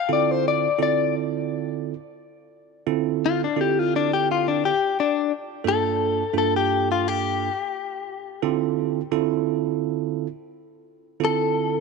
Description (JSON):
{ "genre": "blues", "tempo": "86 BPM", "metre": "4/4", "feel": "straight", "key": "D minor", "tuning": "A4 = 441 Hz", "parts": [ { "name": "direct-recorded clean electric guitar", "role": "melody", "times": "0.0-11.8 s", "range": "D4 to F5", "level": "-22 LUFS", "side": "left 9 dB", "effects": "none" }, { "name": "bell-like tine electric piano", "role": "accompaniment", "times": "0.1-11.8 s", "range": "G2 to A4", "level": "-24 LUFS", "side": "right 14 dB", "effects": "none" } ], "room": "moderate plate reverb, RT60 3.5 s", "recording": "1960s-style stereo with parts hard left and right", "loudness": "-21 LUFS", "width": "side -4 dB against mid", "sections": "0.0-2.9 A section; 2.9-11.8 A section", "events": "clean electric guitar solo 0.0-2.9, 2.9-11.8", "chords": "0.0 Dm9; 5.7 Gm9; 8.4 Dm9" }